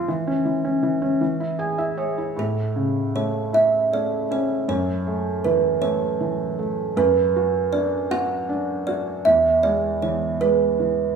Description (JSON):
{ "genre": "children's music, lullaby", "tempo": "52 BPM (dotted quarters)", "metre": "6/8", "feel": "straight", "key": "A major", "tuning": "A4 = 435 Hz", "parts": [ { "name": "kalimba", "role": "melody", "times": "0.0-11.2 s", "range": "A4 to F#5", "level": "-20 LUFS", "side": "right 4 dB", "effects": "none" }, { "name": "felt-muted upright piano", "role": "accompaniment", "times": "0.0-11.2 s", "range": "E2 to G#5", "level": "-23 LUFS", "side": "equal", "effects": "none" } ], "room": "wet recital hall reverb, RT60 1.5 s", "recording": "recorded in a church or concert hall", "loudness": "-19 LUFS", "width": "side -6 dB against mid", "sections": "0.0-2.4 A section; 2.4-11.2 B section", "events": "felt piano fill 1.2-2.4", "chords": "0.1 A/E; 1.2 E; 2.4 A; 4.7 F#m7; 7.0 Bm/F#; 9.2 E" }